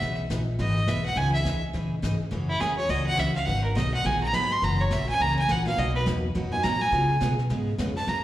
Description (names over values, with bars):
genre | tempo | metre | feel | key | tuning
country, western swing | 208 BPM | 4/4 | swing 62% on 8ths | unclear | A4 = 440 Hz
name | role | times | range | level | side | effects
clear fiddle | second line | 0.0-8.2 s | E4 to C6 | -26 LUFS | right 1 dB | slapback echo
picked steel-string acoustic guitar | accompaniment | 0.0-8.2 s | B2 to G#4 | -30 LUFS | right 1 dB | slapback echo
upright bass | bass | 0.0-8.2 s | F#1 to C#3 | -28 LUFS | equal | none
jazz brush drum kit | drums | 0.0-8.2 s | brushed snare drum, hi-hat, snare drum | -37 LUFS | left 2 dB | slapback echo
dark upright piano | accompaniment | 5.7-8.0 s | F#3 to G#4 | -36 LUFS | left 2 dB | slapback echo
room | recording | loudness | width
light reverb, small room ambience | live gig heard through the venue's PA, recital hall reverb | -23 LUFS | side -14 dB against mid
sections
0.0-8.2 A section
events
fiddle solo 0.0-8.2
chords
0.0 Emaj7; 1.2 C#madd9; 2.3 F#7; 3.5 G#m7; 4.6 F#7; 5.8 Bmaj7; 6.9 C#7